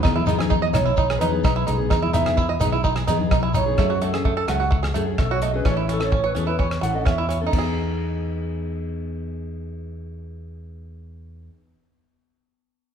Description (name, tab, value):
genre	highlife guitar band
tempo	128 BPM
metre	4/4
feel	straight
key	E major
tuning	A4 = 442 Hz
part	picked steel-string acoustic guitar	accompaniment	0.0-11.6 s	D#3 to A4	-30 LUFS	left 5 dB	none
part	bluegrass banjo	arpeggios	0.0-11.5 s	A3 to D#5	-25 LUFS	right 5 dB	none
part	fingered electric bass	bass	0.0-11.5 s	A1 to F#2	-26 LUFS	equal	none
part	damped 70s drum kit	drums	0.0-7.6 s	crash cymbal, hi-hat, kick drum, rim click	-24 LUFS	equal	none
part	shekere	percussion	0.0-3.7 s	none	-29 LUFS	left 2 dB	none
part	congas	percussion	0.2-3.7 s	none	-28 LUFS	left 5 dB	none
part	mellow electric guitar	melody	0.7-7.4 s	E4 to F#5	-26 LUFS	right 2 dB	spring reverb
room	wet large studio reverb, RT60 1.1 s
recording	band playing live in one room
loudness	-19 LUFS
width	side -8 dB against mid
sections	0.0-7.5 A section; 7.5-11.3 B section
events	clean electric guitar solo 0.0-7.5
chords	0.0 Emaj7; 3.8 F#madd9; 5.7 A; 7.5 Emaj7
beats	| 0.04 0.50 0.97 1.44 | 1.91 2.37 2.84 3.31 | 3.78 4.25 4.71 5.18 | 5.65 6.12 6.59 7.06 | 7.53 8.00 8.47 8.94 | 9.41 9.88 10.35 10.81